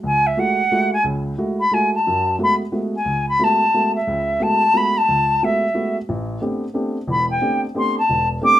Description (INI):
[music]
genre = jazz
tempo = 179 BPM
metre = 3/4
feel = swing 63% on 8ths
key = unclear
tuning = A4 = 444 Hz
[part]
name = dark baby grand piano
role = accompaniment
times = 0.0-8.6 s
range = E1 to G4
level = -22 LUFS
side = equal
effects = none
[part]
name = silver concert flute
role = melody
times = 0.1-8.6 s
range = Fb5 to D6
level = -16 LUFS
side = equal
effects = none
[sound]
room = wet small room ambience, RT60 0.5 s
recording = rough home demo mix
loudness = -17 LUFS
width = side -12 dB against mid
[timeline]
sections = 0.0-2.0 A section; 2.0-8.6 A section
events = flute solo 0.0-8.6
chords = 0.0 Gbm9; 2.0 F#m11; 6.1 Am11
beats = | 0.03 0.36 0.70 | 1.04 1.37 1.71 | 2.04 2.38 2.72 | 3.05 3.39 3.72 | 4.06 4.39 4.73 | 5.06 5.40 5.73 | 6.07 6.40 6.74 | 7.07 7.41 7.74 | 8.07 8.41